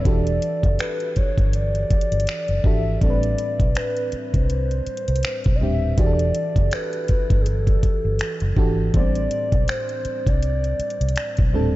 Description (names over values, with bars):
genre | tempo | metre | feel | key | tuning
contemporary R&B | 81 BPM | 4/4 | swing 58% on 16ths | A minor | A4 = 440 Hz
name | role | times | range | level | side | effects
hollow clarinet-like synth lead | melody | 0.0-11.5 s | G#4 to E5 | -26 LUFS | equal | chorus, diffuse ambient delay
mellow FM electric piano | accompaniment | 0.0-11.8 s | A2 to C5 | -27 LUFS | right 1 dB | chorus
vintage muted fingered electric bass | bass | 0.1-11.8 s | D#1 to C2 | -23 LUFS | equal | none
smooth R&B drum kit | drums | 0.1-11.5 s | finger snaps, hi-hat, kick drum | -21 LUFS | equal | none
room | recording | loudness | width
light reverb, digital ambience | nothing above 7.7 kHz | -19 LUFS | side -17 dB against mid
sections
0.0-11.8 A section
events
none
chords
0.1 Em11; 3.0 Am11; 6.0 Em11; 8.9 Am11